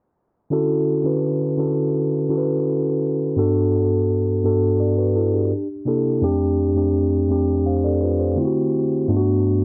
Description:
R&B; 84 BPM; 4/4; straight; D major; A4 = 444 Hz
mellow tine electric piano; solo; 0.5-9.6 s; F2 to F5; -20 LUFS; equal; cassette tape
moderate booth ambience, RT60 0.2 s; home recording on cassette, low-pass filter; -20 LUFS; mono
0.5-9.6 A section
filter sweep 0.5-9.6
0.5 Dmaj9; 3.4 Gmaj9; 5.5 C13; 6.2 F69; 8.4 D7; 9.1 Gmaj9
| 0.51 1.22 1.93 2.65 | 3.36 4.08 4.79 5.50 | 6.22 6.93 7.65 8.36 | 9.08

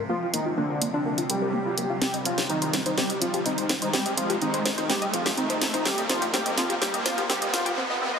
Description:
melodic techno; 125 BPM; 4/4; straight; C minor; A4 = 440 Hz
tight sequenced synth; arpeggios; 0.0-8.2 s; Bb3 to Eb5; -31 LUFS; left 1 dB; chorus, dub echo
overtone-sweeping drone; drone; 0.0-7.8 s; C3 to C4; -38 LUFS; equal; chorus, built-in reverb, phaser
riser; sound effects; 0.0-8.2 s; -32 LUFS; right 1 dB
wide unison lead; melody; 0.1-7.7 s; D4 to G4; -29 LUFS; equal; ping-pong delay
big bright polysynth; second line; 0.1-7.7 s; D3 to G3; -33 LUFS; right 1 dB; ensemble chorus, dub echo
round analog bass; bass; 0.1-7.5 s; barely audible
techno drum kit; drums; 0.3-7.8 s; hi-hat, snare drum; -27 LUFS; equal; high-pass filter on hats, high-pass filter on snare, high-pass filter on room
wet huge ambient reverb, RT60 4.7 s; heavily compressed radio sound, high-pass filter; -23 LUFS; side -6 dB against mid
0.0-8.2 A section
build-up 0.0-8.2; riser 0.0-8.2; filter sweep on synth arpeggio sound 0.0-8.2; filter sweep on analog synth lead 0.0-8.2; filter sweep on analog polysynth 0.0-8.2; filter sweep 0.0-8.2; drum fill 2.0-7.8
0.0 Bbadd9; 2.0 Cm; 5.9 F5
| 0.10 0.58 1.06 1.54 | 2.02 2.50 2.98 3.46 | 3.94 4.42 4.90 5.38 | 5.86 6.34 6.82 7.30 | 7.78

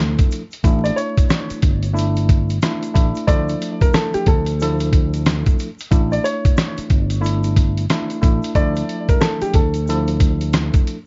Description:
hip hop, boom-bap hip-hop; 91 BPM; 4/4; swing 62% on 16ths; D harmonic minor; A4 = 445 Hz
tine electric piano; accompaniment; 0.0-11.0 s; F3 to A4; -26 LUFS; equal; high-pass filter, low-pass filter
fingered electric bass; bass; 0.0-10.7 s; G1 to D2; -22 LUFS; equal
dusty soul sampler-style drum kit; drums; 0.2-11.1 s; hi-hat, kick drum, rim click, snare drum; -19 LUFS; equal
tube shaker; percussion; 0.2-10.9 s; -47 LUFS; equal
warm upright piano; melody; 0.8-10.0 s; G4 to D5; -25 LUFS; equal; high-pass filter, low-pass filter, analog delay
little or no reverb; dark, warm production, vinyl crackle, nothing above 7.6 kHz; -18 LUFS; mono
0.0-11.1 A section
0.0 Dmadd9; 0.6 Asus4; 3.3 Dmadd9; 5.9 Asus4; 8.6 Dmadd9
| 0.64 1.30 1.96 2.62 | 3.28 3.94 4.60 5.26 | 5.92 6.58 7.23 7.89 | 8.55 9.21 9.87 10.53

